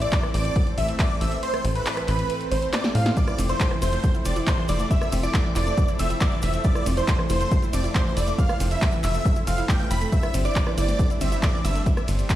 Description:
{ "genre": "uplifting trance", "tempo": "138 BPM", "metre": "4/4", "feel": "straight", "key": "unclear", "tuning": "A4 = 440 Hz", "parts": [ { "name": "big supersaw lead", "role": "melody", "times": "0.0-11.8 s", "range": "B4 to B5", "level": "-28 LUFS", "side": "equal", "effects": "phaser, sidechain pumping, ping-pong delay" }, { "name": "supersaw pad", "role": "sustained chords", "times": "0.0-12.4 s", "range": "E3 to D5", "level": "-33 LUFS", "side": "equal", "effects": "sidechain pumping" }, { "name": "tight sequencer bass", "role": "bass", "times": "0.0-12.2 s", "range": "F1 to A2", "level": "-24 LUFS", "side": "equal", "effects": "tube saturation, sidechain pumping" }, { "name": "punchy analog drum machine", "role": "drums", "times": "0.0-12.4 s", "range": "handclaps, hi-hat, ride cymbal, rim click, snare drum", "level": "-30 LUFS", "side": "equal", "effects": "none" }, { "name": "electronic kick drum", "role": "drums", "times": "0.1-12.4 s", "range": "none", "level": "-23 LUFS", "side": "equal", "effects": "none" }, { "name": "wide unison pluck", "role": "arpeggios", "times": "3.2-11.8 s", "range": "E3 to E4", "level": "-31 LUFS", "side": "right 2 dB", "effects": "sidechain pumping, ping-pong delay" }, { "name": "cabasa", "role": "percussion", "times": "3.2-12.4 s", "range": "none", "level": "-41 LUFS", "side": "left 4 dB", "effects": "none" } ], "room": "light reverb, digital ambience", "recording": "played on a big sound system in a bare room, stone room reverb", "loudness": "-20 LUFS", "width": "side -13 dB against mid", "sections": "0.0-12.4 A section", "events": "kick drops out 1.4-3.2; drum fill 2.7-3.2", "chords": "0.0 Am; 3.2 F; 10.1 Gsus4" }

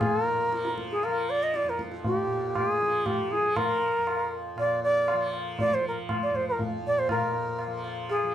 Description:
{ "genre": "indian classical, Hindustani", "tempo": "119 BPM", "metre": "7/4", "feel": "straight", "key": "F raga bageshri", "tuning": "A4 = 440 Hz", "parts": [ { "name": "bright bansuri", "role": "melody", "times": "0.0-8.3 s", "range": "G4-20c to Eb5", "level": "-26 LUFS", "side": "equal", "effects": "none" }, { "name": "tanpura", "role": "drone", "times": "0.0-8.3 s", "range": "F2 to F3", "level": "-36 LUFS", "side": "right 1 dB", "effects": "none" }, { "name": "tabla", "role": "percussion", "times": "0.0-8.3 s", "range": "none", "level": "-32 LUFS", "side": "left 2 dB", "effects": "none" } ], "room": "light reverb", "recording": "dark, warm production", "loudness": "-25 LUFS", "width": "side -10 dB against mid", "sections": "0.0-7.1 A section; 7.1-8.3 A section", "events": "none", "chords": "none" }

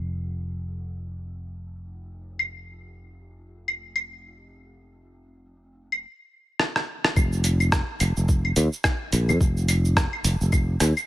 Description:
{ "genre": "organic downtempo", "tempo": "107 BPM", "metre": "4/4", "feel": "swing 59% on 16ths", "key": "unclear", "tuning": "A4 = 440 Hz", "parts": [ { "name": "sustaining fretless electric bass", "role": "bass", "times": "0.0-10.9 s", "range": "F1 to F2", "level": "-24 LUFS", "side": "equal", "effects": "tube saturation, analog chorus, sidechain pumping" }, { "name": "dusty soul sampler-style drum kit", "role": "drums", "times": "2.4-11.1 s", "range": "claves, hi-hat, rim click, shaker", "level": "-25 LUFS", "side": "equal", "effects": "low-pass filter on hats, low-pass filter on perc, low-pass filter on snare, low-pass filter on room" }, { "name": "electronic kick drum", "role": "drums", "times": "7.2-10.7 s", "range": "none", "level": "-22 LUFS", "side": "equal", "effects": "none" } ], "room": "little or no reverb", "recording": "none", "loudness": "-22 LUFS", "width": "side -15 dB against mid", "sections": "0.0-7.2 A section; 7.2-11.1 B section", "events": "drum fill 6.6-7.2", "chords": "none" }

